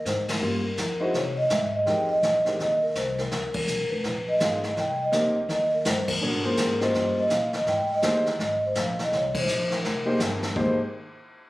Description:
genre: jazz, small-group swing and bop.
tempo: 166 BPM.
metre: 4/4.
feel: swing 63% on 8ths.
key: Ab major.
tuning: A4 = 440 Hz.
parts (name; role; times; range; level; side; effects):
vibraphone with soft mallets; melody; 0.0-10.8 s; Bb4 to G5; -25 LUFS; equal; plate reverb.
upright bass; bass; 0.0-10.8 s; F1 to C3; -32 LUFS; equal; none.
jazz brush drum kit; drums; 0.1-10.8 s; brushed snare drum, hi-hat, kick drum, ride cymbal, snare drum; -30 LUFS; equal; none.
warm concert grand piano; accompaniment; 0.4-10.8 s; G3 to Eb5; -28 LUFS; equal; none.
room: moderate studio reverb, RT60 0.7 s.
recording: recorded on a phone in the room, studio reverb, compression.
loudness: -22 LUFS.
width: side -18 dB against mid.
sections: 0.0-10.6 A section.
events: band accent 0.2, 3.5, 6.0, 9.3.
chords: 0.4 Gm7b5; 1.1 Abadd11; 1.9 Fm11; 3.3 Db13; 4.8 Cm7; 6.2 Bbm9; 6.9 Eb9; 7.7 Abmaj9.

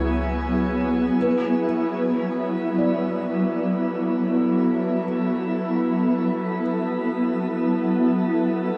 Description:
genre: ambient.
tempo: free time.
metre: none.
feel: none.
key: B dorian.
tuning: A4 = 440 Hz.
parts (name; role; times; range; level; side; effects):
shimmering ambient pad; sustained chords; 0.0-8.8 s; F#3 to A4; -23 LUFS; equal; chorus, built-in reverb.
felt-muted upright piano; arpeggios; 0.0-8.8 s; B4 to D5; -34 LUFS; equal; diffuse ambient delay.
warm sub bass; bass; 0.0-1.1 s; C#2; -32 LUFS; equal; none.
drifting glass-harmonics texture; texture; 0.0-1.2 s; G#5; -43 LUFS; equal; chorus, built-in reverb.
room: wet shimmer reverb, RT60 8.4 s.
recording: dark, warm production.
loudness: -23 LUFS.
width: mono.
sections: 0.0-1.2 A section; 1.2-8.8 B section.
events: none.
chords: 0.0 C#m7; 1.2 Bm7.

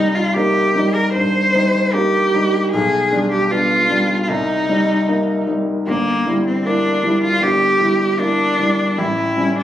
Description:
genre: classical, romantic duo for cello and grand piano.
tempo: 76 BPM.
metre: 4/4.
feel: rubato.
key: unclear.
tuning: A4 = 440 Hz.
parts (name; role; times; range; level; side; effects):
rich cello; melody; 0.0-9.6 s; Bb3 to C5; -17 LUFS; equal; none.
warm grand piano; accompaniment; 0.0-9.6 s; G1 to E4; -18 LUFS; equal; none.
room: light reverb.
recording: recorded on a phone in the room, club reverb, compression.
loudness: -14 LUFS.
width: side -11 dB against mid.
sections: 0.0-9.6 A section.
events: none.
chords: 0.0 Cm7; 2.7 G7/B; 4.3 Cm7; 5.9 Edim/G; 9.0 A7.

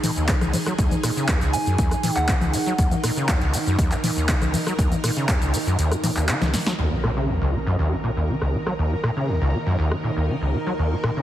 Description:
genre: acid house.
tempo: 120 BPM.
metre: 4/4.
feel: straight.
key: Eb minor.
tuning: A4 = 440 Hz.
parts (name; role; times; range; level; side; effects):
string machine, full ensemble; sustained chords; 0.0-11.2 s; Eb3 to Bb4; -29 LUFS; right 1 dB; ensemble chorus, sidechain pumping.
overdriven acid bass; riff; 0.0-11.2 s; Db2 to Gb3; -23 LUFS; equal; distortion, tube saturation, ensemble chorus, cassette tape.
punchy analog drum machine; drums; 0.0-11.1 s; congas, crash cymbal, handclaps, hi-hat, rim click, shaker, snare drum; -26 LUFS; left 1 dB; overdrive, low-pass filter on hats, small room reverb, low-pass filter on perc, low-pass filter on snare, low-pass filter on cymbals.
electronic kick drum; drums; 0.3-5.4 s; none; -22 LUFS; equal; overdrive, small room reverb.
soft synth bell; melody; 1.5-2.9 s; Gb5 to Ab5; -28 LUFS; right 2 dB; chorus, tape echo.
impact; sound effects; 6.8-8.8 s; none; -30 LUFS; equal; none.
room: light reverb, digital ambience.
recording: heavily compressed radio sound, multiband compression.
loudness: -20 LUFS.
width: side -12 dB against mid.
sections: 0.0-6.8 A section; 6.8-11.2 B section.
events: kick drops out 5.8-6.8; drum fill 6.4-6.8; impact 6.8-8.8; filter sweep on drum 6.8-11.2.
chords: 0.0 Eb5.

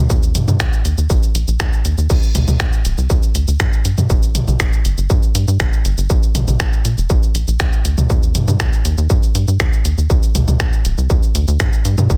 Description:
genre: melodic techno.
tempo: 120 BPM.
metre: 4/4.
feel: straight.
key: unclear.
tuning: A4 = 444 Hz.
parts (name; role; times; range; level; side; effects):
tight sequencer bass; bass; 0.0-12.2 s; D1 to Bb2; -19 LUFS; equal; tube saturation, sidechain pumping.
electronic kick drum; drums; 0.1-12.2 s; none; -18 LUFS; equal; distortion.
techno drum kit; drums; 0.1-12.2 s; crash cymbal, finger snaps, hi-hat, shaker, toms; -24 LUFS; equal; soft clipping on snare.
room: little or no reverb.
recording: dense, heavily limited modern master.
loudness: -16 LUFS.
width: mono.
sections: 0.0-12.2 A section.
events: none.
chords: none.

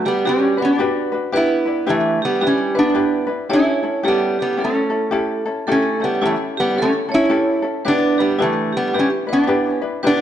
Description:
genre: Hawaiian.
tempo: 110 BPM.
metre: 4/4.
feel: swing 61% on 8ths.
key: unclear.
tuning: A4 = 440 Hz.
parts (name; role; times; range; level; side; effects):
lap resonator guitar; melody; 0.0-10.2 s; E3 to E4; -18 LUFS; equal; slapback echo.
ukulele; accompaniment; 0.0-10.2 s; C#4 to B4; -22 LUFS; left 3 dB; none.
vibraphone with hard mallets; second line; 0.1-10.2 s; E4 to C#5; -23 LUFS; right 4 dB; none.
room: moderate recital hall reverb, RT60 1.7 s.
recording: dark, warm production, nothing above 11.0 kHz.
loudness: -16 LUFS.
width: side -10 dB against mid.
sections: 0.0-10.2 A section.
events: none.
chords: 0.0 Gmaj7; 1.3 Em7; 3.5 A7; 7.8 Em7.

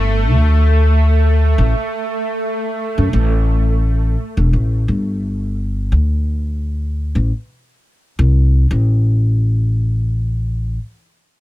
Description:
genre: trip hop.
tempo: 86 BPM.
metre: 4/4.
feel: swing 54% on 16ths.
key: unclear.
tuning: A4 = 444 Hz.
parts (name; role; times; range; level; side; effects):
upright bass; bass; 0.0-10.8 s; E1 to F#2; -14 LUFS; equal; none.
bowed-like drone; texture; 0.0-3.1 s; A3; -22 LUFS; right 2 dB; built-in reverb.
room: little or no reverb.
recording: none.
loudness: -14 LUFS.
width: side -16 dB against mid.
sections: 0.0-8.7 A section; 8.7-11.4 B section.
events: filter sweep on upright bass 0.0-8.7.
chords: 0.3 D5; 3.1 A5; 5.9 D5; 8.7 N.C..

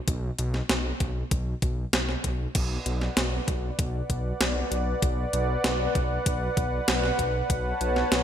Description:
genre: synthwave.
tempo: 97 BPM.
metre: 4/4.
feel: straight.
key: B minor.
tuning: A4 = 440 Hz.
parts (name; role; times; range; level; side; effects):
dark detuned saw bass; bass; 0.1-8.2 s; B1; -29 LUFS; equal; none.
clean 12-bit digital drum machine; drums; 0.1-8.2 s; crash cymbal, hi-hat, snare drum; -28 LUFS; equal; overdrive, studio reverb, gated reverb.
electronic kick drum; drums; 0.1-7.6 s; none; -28 LUFS; equal; overdrive, studio reverb.
warm analog pad; sustained chords; 2.5-8.2 s; B3 to A5; -29 LUFS; equal; chorus, sidechain pumping.
room: moderate plate reverb, RT60 2.1 s.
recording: bright 1980s-style digital production.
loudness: -24 LUFS.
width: side -9 dB against mid.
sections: 0.0-8.2 A section.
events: none.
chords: 0.0 N.C.; 2.6 Bm; 7.5 F#m/B.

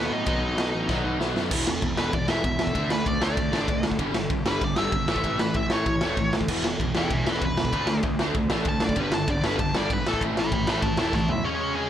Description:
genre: punk rock.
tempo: 193 BPM.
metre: 4/4.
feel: straight.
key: unclear.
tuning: A4 = 439 Hz.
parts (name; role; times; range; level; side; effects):
nasal lead guitar with a parked wah; melody; 0.0-11.9 s; G#3 to B5; -29 LUFS; equal; overdrive.
distorted electric guitar; riff; 0.0-11.9 s; E2 to D4; -28 LUFS; equal; distortion.
fuzz picked electric bass; bass; 0.0-11.4 s; E1 to A2; -32 LUFS; equal; overdrive.
raw garage drum kit; drums; 0.3-11.4 s; crash cymbal, kick drum, ride cymbal, snare drum, toms; -26 LUFS; equal; none.
room: little or no reverb.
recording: none.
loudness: -22 LUFS.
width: side -10 dB against mid.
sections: 0.0-1.5 A section; 1.5-11.4 B section.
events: half time 0.0-1.5; drum fill 0.9-1.5, 11.1-11.4; lead electric guitar solo 1.5-11.4.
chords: 0.0 B; 1.5 E5; 2.8 D5; 4.0 G5; 5.1 A; 6.5 E5; 7.7 D5; 9.0 G5; 10.0 A.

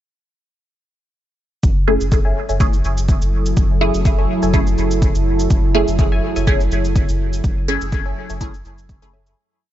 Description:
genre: dub techno.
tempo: 124 BPM.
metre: 4/4.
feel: swing 54% on 16ths.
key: F# minor.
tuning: A4 = 440 Hz.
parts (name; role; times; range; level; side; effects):
deep dark ambient pad; sustained chords; 2.9-9.3 s; F#3 to A4; -23 LUFS; right 2 dB; chorus, built-in reverb, sidechain pumping.
warm sub bass; bass; 1.6-9.3 s; F#1; -20 LUFS; equal; sidechain pumping.
cabasa; drums; 1.6-9.4 s; none; -35 LUFS; right 2 dB; overdrive, studio reverb.
electronic kick drum; drums; 1.6-9.0 s; none; -17 LUFS; equal; overdrive, studio reverb.
filtered dub chord stab; stabs; 1.9-9.1 s; A3 to G#4; -22 LUFS; right 1 dB; phaser, sidechain pumping, dub echo.
filtered dub chord stab; riff; 2.2-9.4 s; A4 to G#5; -30 LUFS; left 2 dB; phaser, sidechain pumping, dub echo.
room: digital ambience.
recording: dark, warm production, nothing above 7.8 kHz.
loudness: -15 LUFS.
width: side -12 dB against mid.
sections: 1.6-9.4 groove.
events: fade-out 6.8-9.4.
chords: 1.6 F#m7.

